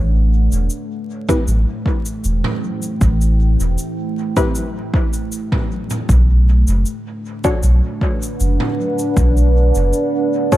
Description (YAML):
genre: ambient dub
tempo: 78 BPM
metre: 4/4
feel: straight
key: A dorian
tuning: A4 = 435 Hz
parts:
  - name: deep dark ambient pad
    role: sustained chords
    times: 0.0-10.6 s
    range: A3 to G5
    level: -22 LUFS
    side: right 1 dB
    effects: chorus, built-in reverb
  - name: soft dub sub bass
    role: bass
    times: 0.0-9.9 s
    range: E1 to B1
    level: -13 LUFS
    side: equal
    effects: none
  - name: cabasa and toms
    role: drums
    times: 0.5-10.6 s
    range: none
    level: -27 LUFS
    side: right 1 dB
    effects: dub echo
  - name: filtered dub chord stab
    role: stabs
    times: 1.3-10.6 s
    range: C4 to C#5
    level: -23 LUFS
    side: left 2 dB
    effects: analog chorus, dub echo
  - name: electronic kick drum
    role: drums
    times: 1.3-10.6 s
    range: none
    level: -19 LUFS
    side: equal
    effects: overdrive
room: small room reverb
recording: vinyl crackle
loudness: -15 LUFS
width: side -15 dB against mid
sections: 0.0-10.6 A section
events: none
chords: 0.0 Am7; 6.1 Bm7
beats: 0.71 1.48 2.25 | 3.01 3.78 4.55 5.32 | 6.09 6.86 7.63 8.40 | 9.17 9.94